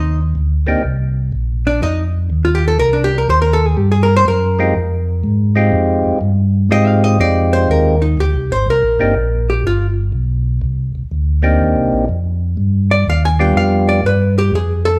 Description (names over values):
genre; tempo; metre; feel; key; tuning
jazz; 123 BPM; 4/4; swing 67% on 8ths; C minor; A4 = 440 Hz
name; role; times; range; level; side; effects
hollow-body jazz guitar; accompaniment; 0.0-9.9, 12.9-15.0 s; D4 to Ab5; -19 LUFS; equal; none
mellow tonewheel organ; bass; 0.0-15.0 s; G1 to Ab2; -17 LUFS; equal; overdrive, chorus vibrato, slow rotary speaker
percussive tonewheel organ; melody; 0.7-0.8, 4.6-14.0 s; G3 to G4; -18 LUFS; equal; stopped rotary speaker
room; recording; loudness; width
moderate large studio reverb, RT60 1.1 s; band playing live in one room; -15 LUFS; mono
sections
0.0-15.0 A section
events
hollow-body jazz guitar solo 0.0-15.0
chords
0.0 Cm7; 4.8 Fm7; 8.7 Cm7; 12.6 G7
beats
0.36 | 0.84 1.33 1.82 2.31 | 2.80 3.29 3.78 4.27 | 4.76 5.25 5.74 6.23 | 6.71 7.20 7.69 8.18 | 8.67 9.16 9.65 10.13 | 10.62 11.11 11.60 12.09 | 12.58 13.06 13.55 14.04 | 14.53